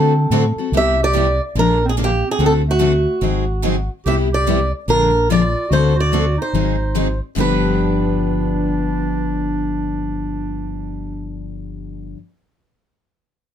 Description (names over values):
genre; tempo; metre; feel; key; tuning
acoustic string swing (jazz manouche); 145 BPM; 4/4; swing 63% on 8ths; G mixolydian; A4 = 440 Hz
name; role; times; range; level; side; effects
picked swing-style acoustic guitar; melody; 0.0-12.2 s; F#4 to E5; -20 LUFS; right 1 dB; none
growling clarinet; second line; 0.0-11.4 s; A3 to G4; -25 LUFS; right 6 dB; none
picked steel-string acoustic guitar; accompaniment; 0.0-12.2 s; G2 to A4; -21 LUFS; left 7 dB; none
picked steel-string acoustic guitar; accompaniment; 0.0-12.2 s; G2 to Bb4; -26 LUFS; right 9 dB; none
fingered electric bass; bass; 0.0-12.1 s; G1 to D3; -20 LUFS; equal; none
room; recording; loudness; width
light reverb; close, detailed microphones; -15 LUFS; side -9 dB against mid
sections
0.7-7.4 A section; 7.4-10.7 B section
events
none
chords
0.0 D7; 0.7 Cmaj9; 1.6 Bb7; 2.4 D7; 3.2 Ab7; 4.0 Cmaj9; 4.9 Bb7; 5.7 D7; 6.5 Ab7; 7.4 G7